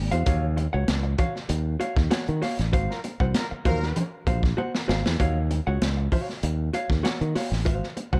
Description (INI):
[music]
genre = funk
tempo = 97 BPM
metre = 4/4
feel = straight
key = Eb dorian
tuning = A4 = 440 Hz
[part]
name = fingered electric bass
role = bass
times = 0.0-8.2 s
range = Ab1 to Eb3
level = -28 LUFS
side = equal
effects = none
[part]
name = vintage hollow-body jazz guitar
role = accompaniment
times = 0.1-8.2 s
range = Gb4 to Gb5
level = -33 LUFS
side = equal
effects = none
[part]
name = crunchy breakbeat drum kit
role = drums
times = 0.1-8.2 s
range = hi-hat, kick drum, snare drum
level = -29 LUFS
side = equal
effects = none
[part]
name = congas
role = percussion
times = 0.3-8.1 s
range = none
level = -36 LUFS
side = equal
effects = none
[part]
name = warm horn section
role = second line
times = 2.9-4.1 s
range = Gb3 to Bb4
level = -37 LUFS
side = equal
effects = none
[sound]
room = little or no reverb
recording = dark, warm production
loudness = -25 LUFS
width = mono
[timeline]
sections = 0.0-8.2 A section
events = band accent 2.7-5.2; drum fill 4.6-5.2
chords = 0.3 Ebm9; 2.7 Ab13 (rootless); 5.2 Ebm9; 7.7 Ab13